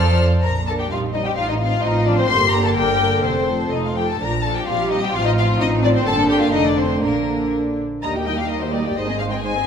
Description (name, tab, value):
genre	quick classical-period movement for string orchestra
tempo	118-132 BPM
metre	2/4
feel	rubato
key	Bb major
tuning	A4 = 438 Hz
part	rich studio violin section	melody	0.0-9.7 s	Bb4 to F6	-23 LUFS	left 6 dB	none
part	clear studio violin section	second line	0.0-9.7 s	Bb3 to G5	-24 LUFS	left 3 dB	none
part	dark studio viola section	accompaniment	0.0-9.7 s	D3 to D5	-24 LUFS	equal	none
part	rich studio double bass section	bass	0.0-9.7 s	F1 to F2	-22 LUFS	right 2 dB	none
part	warm studio cello section	bass	0.0-9.7 s	Eb2 to Bb4	-24 LUFS	right 2 dB	none
room	wet recital hall reverb, RT60 1.3 s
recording	recorded in a church or concert hall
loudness	-17 LUFS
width	side -7 dB against mid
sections	0.4-8.0 A section; 8.0-9.7 B section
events	none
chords	0.4 Bb; 0.9 Cm7/Bb; 1.4 F/A; 2.3 Gm; 3.2 F; 4.2 Bb; 4.7 C5/Bb; 5.1 F/A; 6.1 Gm; 6.5 F6; 7.0 Bb; 8.0 Eb; 9.0 Ab